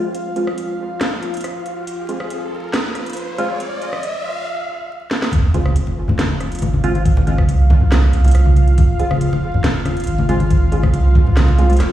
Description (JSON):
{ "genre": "deep dubstep", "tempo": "139 BPM", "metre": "4/4", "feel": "half-time", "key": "F minor", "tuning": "A4 = 440 Hz", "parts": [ { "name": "dark analog pad", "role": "sustained chords", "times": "0.0-11.9 s", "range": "F4 to F5", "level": "-26 LUFS", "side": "left 2 dB", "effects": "chorus" }, { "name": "filtered dub chord stab", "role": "stabs", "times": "0.0-11.8 s", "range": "Ab3 to F4", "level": "-25 LUFS", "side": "right 2 dB", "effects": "phaser, lush chorus, dub echo" }, { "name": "riser and sub drop", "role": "sound effects", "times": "1.8-7.1 s", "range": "none", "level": "-25 LUFS", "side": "equal", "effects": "none" }, { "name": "garage drum kit", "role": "drums", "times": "0.1-11.9 s", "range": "hi-hat, rim click, snare drum", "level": "-24 LUFS", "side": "equal", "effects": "none" }, { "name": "soft dub sub bass", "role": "bass", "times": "5.3-11.9 s", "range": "F1 to C2", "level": "-15 LUFS", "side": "right 1 dB", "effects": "none" }, { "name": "electronic kick drum", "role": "drums", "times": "5.3-11.2 s", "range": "none", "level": "-13 LUFS", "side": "right 1 dB", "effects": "none" }, { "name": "congas", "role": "percussion", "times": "5.3-11.9 s", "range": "none", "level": "-20 LUFS", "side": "left 2 dB", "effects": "dub echo" } ], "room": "light reverb, digital ambience", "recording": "played on a big sound system in a bare room, large studio reverb, vinyl crackle, studio ambience", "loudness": "-14 LUFS", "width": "side -13 dB against mid", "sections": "0.0-5.3 A section; 5.3-11.9 B section", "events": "build-up 0.0-5.3; riser 1.8-4.5; drum fill 5.1; drop 5.3-11.9; impact 5.3-7.1", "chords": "0.0 N.C.; 5.3 Fm" }